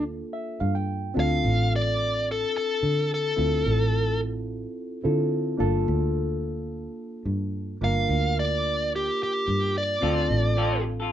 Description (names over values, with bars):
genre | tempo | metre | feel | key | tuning
blues | 108 BPM | 4/4 | swing 54% on 16ths | D minor | A4 = 440 Hz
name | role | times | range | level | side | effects
dark smooth lead guitar | melody | 0.0-4.2, 7.8-10.8 s | G4 to F5 | -26 LUFS | left 1 dB | overdrive
reed electric piano | accompaniment | 0.0-11.1 s | Bb3 to G5 | -30 LUFS | equal | phaser
fingered electric bass | bass | 0.0-11.1 s | G1 to D3 | -26 LUFS | right 1 dB | none
electric guitar through a small old amp | stabs | 10.0-11.1 s | C4 to A4 | -29 LUFS | left 2 dB | vibrato effect, slapback echo
room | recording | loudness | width
moderate small room reverb, RT60 0.6 s | band playing live in one room, nothing above 10.4 kHz | -23 LUFS | side -10 dB against mid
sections
0.0-11.1 A section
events
reed electric piano fill 0.1-1.2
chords
0.0 Gm7; 1.2 Dm7; 5.6 Gm7; 10.0 Dm7